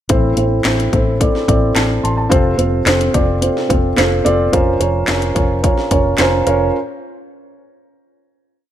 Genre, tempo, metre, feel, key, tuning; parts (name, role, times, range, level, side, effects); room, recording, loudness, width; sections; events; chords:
piano-driven pop; 108 BPM; 4/4; straight; A4 = 442 Hz
felt-muted upright piano; accompaniment; 0.1-6.8 s; A2 to C6; -15 LUFS; right 1 dB
vintage muted fingered electric bass; bass; 0.1-6.7 s; F1 to A1; -19 LUFS; left 1 dB
house drum kit; drums; 0.1-6.6 s; handclaps, hi-hat, kick drum, snare drum; -17 LUFS; left 1 dB
light reverb; -13 LUFS; side -11 dB against mid
0.1-8.7 verse
0.1 Am; 2.3 F; 4.5 Bbmadd9/F; 6.7 N.C.